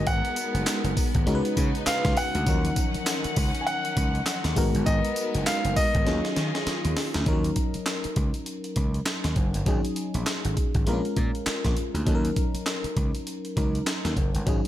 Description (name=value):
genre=R&B, new jack swing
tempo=100 BPM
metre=4/4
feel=swing 60% on 16ths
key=Eb minor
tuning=A4 = 440 Hz
part: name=clear concert grand piano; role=melody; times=0.0-6.9 s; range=Eb5 to Ab5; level=-30 LUFS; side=equal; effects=digital delay
part: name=FM electric piano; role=accompaniment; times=0.0-14.7 s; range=F3 to Cb5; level=-30 LUFS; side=left 2 dB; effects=chorus
part: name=warm studio string section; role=sustained chords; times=0.0-7.3 s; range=Db3 to Gb5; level=-33 LUFS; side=equal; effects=none
part: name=gritty slap bass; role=bass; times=0.0-14.6 s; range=Gb1 to Eb3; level=-27 LUFS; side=equal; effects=overdrive
part: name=breakbeat sampler-style drum kit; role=drums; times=0.1-14.7 s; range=handclaps, hi-hat, kick drum, snare drum, tambourine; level=-27 LUFS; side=equal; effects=none
room=light reverb, digital ambience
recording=none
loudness=-23 LUFS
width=side -13 dB against mid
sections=0.0-7.3 A section; 7.3-14.7 B section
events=drum fill 6.1-7.3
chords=0.0 Abm9; 1.3 Db9sus4; 2.5 Ebm9; 4.6 Abm9; 6.1 Ebm11; 7.3 Ebm7; 9.7 Ab7sus4; 10.9 Bbm7; 12.1 Ebm7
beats=| 0.07 0.67 1.27 1.87 | 2.47 3.07 3.67 4.27 | 4.87 5.47 6.07 6.67 | 7.27 7.87 8.47 9.07 | 9.67 10.27 10.87 11.47 | 12.07 12.67 13.27 13.87 | 14.47